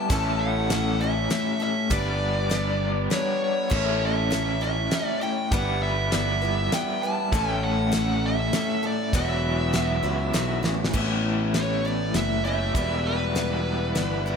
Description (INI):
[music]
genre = folk rock and heartland rock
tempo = 100 BPM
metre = 3/4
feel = straight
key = unclear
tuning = A4 = 440 Hz
[part]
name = dark smooth lead guitar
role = melody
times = 0.0-14.2 s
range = B4 to A5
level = -28 LUFS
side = equal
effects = overdrive, slapback echo
[part]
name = picked steel-string acoustic guitar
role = accompaniment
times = 0.0-14.4 s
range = E2 to B4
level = -31 LUFS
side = left 3 dB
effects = slapback echo
[part]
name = raw garage guitar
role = riff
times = 0.0-14.4 s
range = E2 to B4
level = -28 LUFS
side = equal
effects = overdrive, tremolo, slapback echo
[part]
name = modern bright picked electric bass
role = bass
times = 0.1-14.4 s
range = E1 to C#2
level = -27 LUFS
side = right 1 dB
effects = none
[part]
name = damped 70s drum kit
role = drums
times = 0.1-14.1 s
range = crash cymbal, hi-hat, kick drum, snare drum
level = -29 LUFS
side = equal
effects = none
[sound]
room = moderate lush hall reverb, RT60 1.7 s, small room reverb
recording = big arena sound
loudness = -22 LUFS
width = side -6 dB against mid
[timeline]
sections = 0.0-10.9 A section; 10.9-14.4 B section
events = drum fill 10.6-10.9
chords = 0.1 A; 1.9 G; 3.7 A; 5.5 Em/G; 7.3 A; 9.1 Esus2; 10.9 Aadd9; 12.8 Em